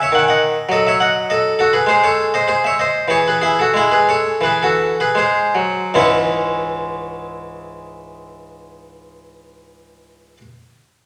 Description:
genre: classical, baroque-style suite movement for harpsichord.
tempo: 72-106 BPM.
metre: 3/4.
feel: rubato.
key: C# minor.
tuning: A4 = 440 Hz.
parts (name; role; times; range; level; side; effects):
harpsichord; solo; 0.0-10.4 s; C#2 to G#5; -17 LUFS; equal; none.
room: wet recital hall reverb, RT60 1.4 s.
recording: none.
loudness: -16 LUFS.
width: mono.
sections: 0.0-6.0 A section; 6.0-10.8 B section.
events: slowing down 1.0-6.0.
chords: 0.1 D#dim; 1.9 G#; 3.1 E69; 5.2 G#7; 6.0 C#m.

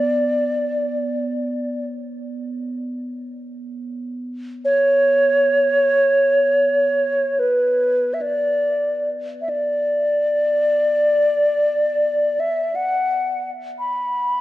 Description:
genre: world meditative, free-time meditation music.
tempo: free time.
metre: none.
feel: none.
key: B minor.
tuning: A4 = 440 Hz.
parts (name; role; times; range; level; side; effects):
mellow hollow silver concert flute; melody; 0.0-14.4 s; B4 to B5; -17 LUFS; equal; tape echo.
quartz singing bowl; texture; 0.0-6.2 s; B3; -31 LUFS; right 2 dB; none.
room: wet recital hall reverb, RT60 1.4 s, studio ambience.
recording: worn, warbling old tape, cassette tape, warbly pitch drift.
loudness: -17 LUFS.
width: side -15 dB against mid.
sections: 0.0-14.4 A section.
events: none.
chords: none.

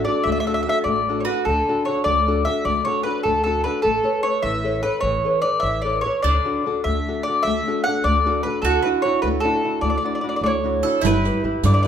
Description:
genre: italian folk, Italian serenade.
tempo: 100 BPM (dotted quarters).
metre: 6/8.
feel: straight.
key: D major.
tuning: A4 = 436 Hz.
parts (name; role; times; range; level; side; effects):
mandolin; melody; 0.0-11.9 s; A4 to F#5; -21 LUFS; equal; none.
bowl-back mandolin; second line; 0.0-1.4, 6.2-11.9 s; D4 to A4; -27 LUFS; right 7 dB; none.
nylon-string guitar; accompaniment; 0.0-11.9 s; D3 to C#5; -24 LUFS; left 3 dB; none.
upright bass; bass; 0.0-11.9 s; G1 to G2; -24 LUFS; equal; none.
riq; percussion; 11.0-11.9 s; none; -25 LUFS; right 7 dB; none.
room: moderate recital hall reverb, RT60 1.5 s.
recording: minimal, uncompressed stereo recording.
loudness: -18 LUFS.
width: side -8 dB against mid.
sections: 0.0-1.5 A section; 1.5-11.0 B section.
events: none.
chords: 0.0 D; 3.8 Aadd9; 6.2 D; 8.6 Dadd9; 11.0 G6.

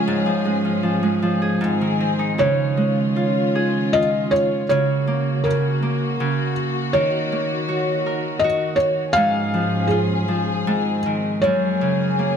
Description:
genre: children's music, lullaby.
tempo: 79 BPM.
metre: 3/4.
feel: rubato.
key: Db major.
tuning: A4 = 440 Hz.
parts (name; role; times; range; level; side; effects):
felt-muted upright piano; melody; 0.0-12.4 s; Ab4 to F5; -22 LUFS; equal; none.
Celtic harp; accompaniment; 0.0-12.4 s; Gb2 to Bb4; -21 LUFS; right 1 dB; none.
dark chamber string section; sustained chords; 0.0-12.4 s; Ab2 to Ab4; -25 LUFS; left 2 dB; none.
room: light reverb.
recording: close, detailed microphones.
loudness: -18 LUFS.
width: side -7 dB against mid.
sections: 0.0-2.4 A section; 2.4-12.4 B section.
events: none.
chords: 0.1 Db/Ab; 1.6 Ab; 2.4 Dbadd9; 4.7 Gb/Db; 6.9 Ebm; 9.2 Db/Ab; 10.7 Ab; 11.4 Gbadd9.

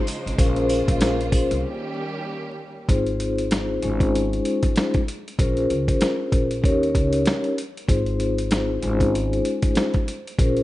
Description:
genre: hip hop, boom-bap hip-hop.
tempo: 96 BPM.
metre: 4/4.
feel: swing 58% on 16ths.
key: Ab major.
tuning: A4 = 440 Hz.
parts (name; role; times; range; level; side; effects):
warm studio string section; sustained chords; 0.0-2.9 s; Db3 to C5; -30 LUFS; right 1 dB; high-pass filter, low-pass filter.
dusty soul sampler-style drum kit; drums; 0.1-10.6 s; hi-hat, kick drum, snare drum; -22 LUFS; equal; none.
sleigh bells; percussion; 0.1-1.5 s; none; -37 LUFS; right 4 dB; none.
upright bass; bass; 0.3-10.6 s; Ab1 to Eb2; -26 LUFS; equal; none.
vibraphone with soft mallets; accompaniment; 0.4-10.6 s; Ab3 to Db5; -23 LUFS; left 2 dB; cassette tape, high-pass filter, low-pass filter.
room: little or no reverb.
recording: rough home demo mix, vinyl crackle, nothing above 10.5 kHz.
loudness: -20 LUFS.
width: side -16 dB against mid.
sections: 0.0-2.9 A section; 2.9-10.6 B section.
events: break 1.6-2.9.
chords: 0.4 Bbm9; 1.6 Eb7; 2.9 Ab6; 3.8 Dbmaj9/Ab; 5.4 Bbm9; 6.6 Eb7; 7.9 Ab6; 8.8 Dbmaj9/Ab.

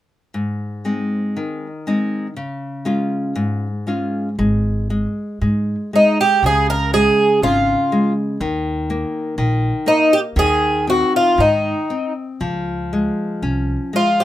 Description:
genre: fado-style ballad.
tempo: 59 BPM.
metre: 2/4.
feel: rubato.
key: Ab major.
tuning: A4 = 440 Hz.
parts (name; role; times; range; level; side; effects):
nylon-string guitar; accompaniment; 0.3-14.2 s; Ab2 to F4; -21 LUFS; left 1 dB; none.
upright bass; bass; 4.4-13.8 s; Ab1 to Ab2; -21 LUFS; equal; none.
fingerpicked twelve-string acoustic guitar; melody; 6.0-14.2 s; Eb4 to Bb4; -14 LUFS; right 1 dB; none.
room: moderate studio ambience, RT60 0.5 s.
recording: minimal, uncompressed stereo recording.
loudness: -16 LUFS.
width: side -13 dB against mid.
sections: 0.3-4.4 A section; 4.4-14.2 B section.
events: none.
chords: 0.3 Ab; 2.4 Db; 4.4 Ab5; 6.4 Db5; 8.4 Eb5; 10.4 Ab/Eb; 12.4 Db.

